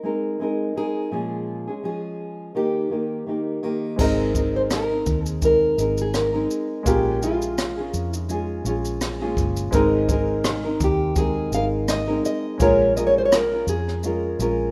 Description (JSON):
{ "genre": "acoustic pop", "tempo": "84 BPM", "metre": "4/4", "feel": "swing 55% on 16ths", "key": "Ab major", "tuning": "A4 = 439 Hz", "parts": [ { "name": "fingerpicked plugged-in steel-string acoustic guitar", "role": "melody", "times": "0.0-14.7 s", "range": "F4 to F5", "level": "-26 LUFS", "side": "equal", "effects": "none" }, { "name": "nylon-string guitar", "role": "accompaniment", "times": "0.0-14.7 s", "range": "Bb2 to Bb4", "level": "-27 LUFS", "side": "equal", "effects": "none" }, { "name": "warm upright piano", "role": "accompaniment", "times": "4.0-14.7 s", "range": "Ab3 to Bb4", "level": "-33 LUFS", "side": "equal", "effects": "none" }, { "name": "vintage muted fingered electric bass", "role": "bass", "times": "4.0-14.7 s", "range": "G1 to F2", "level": "-30 LUFS", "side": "equal", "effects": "none" }, { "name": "jazz brush drum kit", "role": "drums", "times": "4.0-14.6 s", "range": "crash cymbal, kick drum, rim click, shaker", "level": "-28 LUFS", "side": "equal", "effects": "none" } ], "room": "light reverb, studio reverb", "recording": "rough home demo mix", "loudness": "-22 LUFS", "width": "mono", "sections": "0.0-4.0 A section; 4.0-14.7 B section", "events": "none", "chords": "0.0 Abadd9; 1.1 Bbm7; 2.6 Eb; 4.0 Abadd9; 6.9 Bbm7; 9.7 Abadd9; 12.6 Bbm7" }